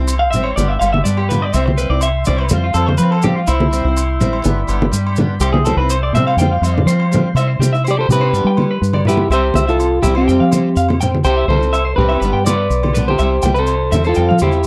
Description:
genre	highlife guitar band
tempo	124 BPM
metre	4/4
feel	straight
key	C major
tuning	A4 = 440 Hz
part	picked steel-string acoustic guitar	accompaniment	0.0-14.6 s	G3 to F4	-26 LUFS	equal	none
part	mellow tonewheel organ	sustained chords	0.0-7.4 s	D5 to C6	-33 LUFS	equal	slow rotary speaker
part	deep dub fingered electric bass	bass	0.0-14.6 s	G1 to G3	-19 LUFS	equal	none
part	agogo bells	percussion	0.1-14.5 s	none	-32 LUFS	equal	none
part	maracas	percussion	0.1-14.7 s	none	-31 LUFS	equal	none
part	clean electric guitar	arpeggios	0.2-14.5 s	E4 to G5	-23 LUFS	equal	none
part	congas	percussion	0.3-14.5 s	none	-21 LUFS	equal	none
part	electric guitar at the edge of break-up	melody	7.9-14.7 s	C4 to D5	-19 LUFS	equal	none
room	light reverb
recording	dry, close 1970s-style studio recording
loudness	-15 LUFS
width	mono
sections	0.0-7.4 A section; 7.4-14.7 B section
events	clean electric guitar solo 0.0-7.4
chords	0.0 C; 0.6 G; 1.5 C; 2.5 Fsus2; 3.5 C; 4.5 G; 5.4 C; 6.4 Fsus2; 7.4 C; 8.3 G; 9.3 C; 10.3 Fsus2; 11.3 C; 12.2 G; 13.2 C

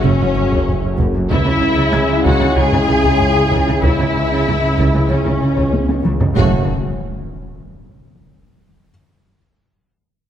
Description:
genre	cinematic, hybrid orchestral and electronic film score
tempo	95 BPM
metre	4/4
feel	straight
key	F# minor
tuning	A4 = 436 Hz
part	dark symphonic violin section	melody	0.0-6.7 s	C#5 to G#5	-24 LUFS	left 6 dB	low-pass filter
part	rich studio violin section	second line	0.0-6.7 s	C#4 to G#4	-24 LUFS	left 2 dB	none
part	clear symphonic viola section	accompaniment	0.0-6.7 s	C#4 to G#4	-22 LUFS	equal	low-pass filter
part	dark trombone section	sustained chords	0.0-6.6 s	C#3 to A3	-25 LUFS	right 2 dB	low-pass filter
part	hollow soft pad	sustained chords	0.0-6.7 s	F#3 to C#5	-25 LUFS	equal	chorus, low-pass filter
part	mellow French horn section	sustained chords	0.0-6.6 s	A3 to F#4	-25 LUFS	left 2 dB	low-pass filter
part	dark symphonic cello section	bass	0.0-6.7 s	F#2 to C#3	-21 LUFS	right 2 dB	none
part	swelling detuned saw bass	bass	0.0-6.7 s	F#1 to C#2	-22 LUFS	equal	none
part	warm symphonic double bass section	bass	0.0-6.7 s	F#1 to C#2	-21 LUFS	right 2 dB	none
part	felt-muted upright piano	texture	0.0-6.4 s	E5 to G#6	-34 LUFS	left 2 dB	none
part	taiko ensemble	drums	0.2-6.5 s	none	-21 LUFS	left 1 dB	none
part	impact	sound effects	6.4-8.9 s	none	-24 LUFS	equal	none
room	wet scoring stage reverb, RT60 1.7 s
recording	dark, warm production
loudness	-13 LUFS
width	side -10 dB against mid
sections	0.0-6.4 A section; 6.4-8.9 B section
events	filter sweep 0.0-6.4; drum fill 5.7-6.4; impact 6.4-8.9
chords	0.0 F#m; 1.3 C#m; 6.4 F#m

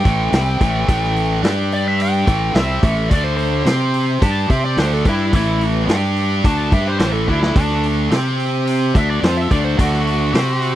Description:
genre	blues rock power trio and southern rock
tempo	108 BPM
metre	4/4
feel	straight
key	unclear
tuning	A4 = 440 Hz
part	fuzz lead guitar	melody	0.0-10.8 s	D4 to A5	-22 LUFS	left 1 dB	wah, distortion
part	tight distorted guitar	riff	0.0-10.8 s	A2 to C5	-20 LUFS	right 1 dB	distortion
part	fuzz fingered electric bass	bass	0.1-10.8 s	A1 to C3	-19 LUFS	equal	overdrive
part	vintage drum kit	drums	0.1-10.7 s	hi-hat, kick drum, snare drum	-17 LUFS	equal	none
room	little or no reverb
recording	dry, close 1970s-style studio recording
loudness	-14 LUFS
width	side -13 dB against mid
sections	0.0-10.8 A section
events	lead electric guitar solo 0.0-10.8; drum fill 7.3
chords	0.1 A5; 1.4 G5; 2.3 A5; 3.1 D5; 3.7 C5; 4.2 D5; 5.3 A5; 5.9 G5; 6.4 A5; 7.6 D5; 8.1 C5; 9.0 D7

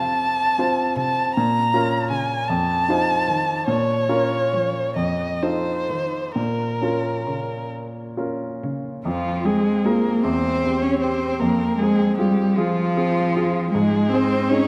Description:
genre	classical, slow romantic movement for piano trio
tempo	42-54 BPM (dotted quarters)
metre	6/8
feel	rubato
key	Bb minor, F minor from 9.1 s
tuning	A4 = 440 Hz
part	warm violin	melody	0.0-14.7 s	F4 to Bb5	-26 LUFS	equal	none
part	rich cello	second line	0.0-14.7 s	C3 to Db4	-24 LUFS	equal	none
part	clear baby grand piano	accompaniment	0.0-14.7 s	E2 to C5	-26 LUFS	equal	none
room	wet concert hall reverb, RT60 2.1 s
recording	dark, warm production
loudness	-21 LUFS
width	mono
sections	0.0-9.1 A section; 9.1-14.7 B section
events	none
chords	0.0 F; 1.4 Bbm; 2.5 F7; 3.7 Bbm; 5.0 F7; 6.4 Bbm; 9.1 Fm; 10.2 C/E; 11.4 Fm; 13.7 Ab

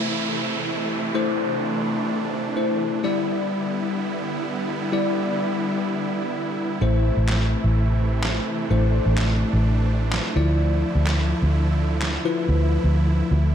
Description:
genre	dance-pop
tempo	127 BPM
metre	4/4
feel	straight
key	A minor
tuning	A4 = 440 Hz
part	bell-like tine electric piano	accompaniment	0.0-13.5 s	F3 to D5	-25 LUFS	left 4 dB	phaser
part	supersaw chords	sustained chords	0.0-13.5 s	C3 to E4	-28 LUFS	right 4 dB	none
part	downlifter	sound effects	0.0-3.0 s	none	-29 LUFS	right 3 dB	none
part	vintage muted fingered electric bass	bass	6.8-13.5 s	A1 to D2	-20 LUFS	equal	none
part	electronic handclaps and snare drum	drums	7.3-12.1 s	none	-30 LUFS	equal	none
room	light reverb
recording	dark, warm production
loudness	-20 LUFS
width	side -9 dB against mid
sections	0.0-13.5 A section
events	drums muted 12.5-13.5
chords	0.0 Am; 3.0 Em7; 6.8 Am; 10.4 Dmadd9

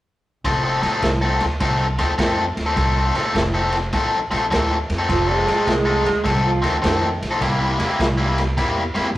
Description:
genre	electric blues shuffle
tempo	103 BPM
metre	4/4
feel	swing 66% on 8ths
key	F mixolydian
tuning	A4 = 441 Hz
part	biting overdriven guitar	riff	0.4-9.1 s	C3 to A4	-20 LUFS	left 2 dB	none
part	upright bass	bass	0.4-9.1 s	F1 to F2	-23 LUFS	equal	none
part	crunchy breakbeat drum kit	drums	0.4-9.2 s	crash cymbal, kick drum, ride cymbal, snare drum	-24 LUFS	equal	none
part	breathy tenor saxophone	second line	5.1-7.2 s	Eb3 to Ab3	-22 LUFS	right 3 dB	none
room	moderate stone room reverb, RT60 1.4 s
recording	rough rehearsal-room recording, tube saturation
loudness	-17 LUFS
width	side -15 dB against mid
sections	0.4-9.2 A section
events	none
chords	0.4 F7; 7.4 C7

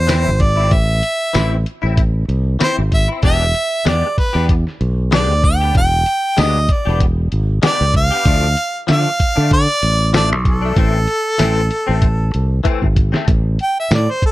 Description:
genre	straight-eighth soul blues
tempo	96 BPM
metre	4/4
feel	swing 55% on 16ths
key	unclear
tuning	A4 = 440 Hz
part	clear harmonica	melody	0.0-14.3 s	A4 to G5	-18 LUFS	right 1 dB	none
part	fingered electric bass	bass	0.0-14.3 s	E1 to D3	-16 LUFS	equal	none
part	direct-recorded clean electric guitar	stabs	0.1-13.3 s	E3 to G4	-23 LUFS	left 6 dB	ensemble chorus
part	lo-fi sampler-style drum kit	drums	0.1-14.3 s	hi-hat, kick drum, snare drum, tambourine	-16 LUFS	equal	none
room	digital ambience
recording	dry, close 1970s-style studio recording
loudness	-13 LUFS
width	side -17 dB against mid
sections	0.0-13.3 A section; 13.3-14.3 B section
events	drum fill 12.7-13.3; harmonica solo 13.3-14.3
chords	0.0 Am; 3.2 E7#9; 8.3 Dm; 10.8 Am; 13.3 N.C.

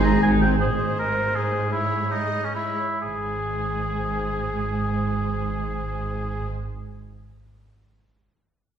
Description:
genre	classical, dramatic, fast romantic movement for symphony orchestra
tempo	127-163 BPM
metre	3/4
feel	rubato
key	Ab major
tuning	A4 = 440 Hz
part	warm studio violin section	melody	0.0-6.5 s	Ab4 to Eb5	-42 LUFS	left 4 dB	none
part	warm oboe	second line	0.0-6.5 s	Db4 to Bb5	-26 LUFS	equal	none
part	warm studio violin section	second line	0.0-6.5 s	Ab4 to Eb5	-38 LUFS	left 1 dB	none
part	clear symphonic viola section	accompaniment	0.0-6.5 s	Ab3 to C5	-29 LUFS	equal	none
part	dark studio double bass section	bass	0.0-0.9, 3.0-6.5 s	Ab1	-28 LUFS	right 1 dB	none
part	dark symphonic cello section	bass	0.0-6.5 s	Ab2	-31 LUFS	right 3 dB	none
part	mellow tuba	bass	0.0-0.6 s	Ab1	-28 LUFS	right 2 dB	none
room	wet recital hall reverb, RT60 1.6 s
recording	heard from further back in the room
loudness	-22 LUFS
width	side -8 dB against mid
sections	0.6-3.0 A section; 3.0-5.7 B section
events	slowing down 0.0-3.0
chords	0.0 Ab; 1.7 Dbm/Ab

